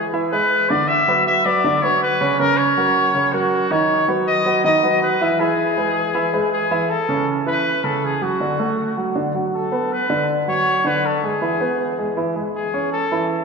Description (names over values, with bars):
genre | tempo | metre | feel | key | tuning
latin | 160 BPM | 4/4 | straight | A major | A4 = 444 Hz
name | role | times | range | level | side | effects
warm trumpet | melody | 0.0-13.3 s | F#4 to E5 | -19 LUFS | left 2 dB | none
warm grand piano | arpeggios | 0.0-13.4 s | C#3 to E5 | -20 LUFS | right 2 dB | none
room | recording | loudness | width
wet church reverb, RT60 2.7 s | recorded in a church or concert hall | -16 LUFS | side -4 dB against mid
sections
0.0-6.9 A section; 6.9-13.4 B section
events
none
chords
0.0 E; 0.9 Bm; 2.4 F#; 3.9 B; 5.4 E; 6.9 A; 8.4 D; 9.9 Bmadd9; 11.4 E; 12.9 A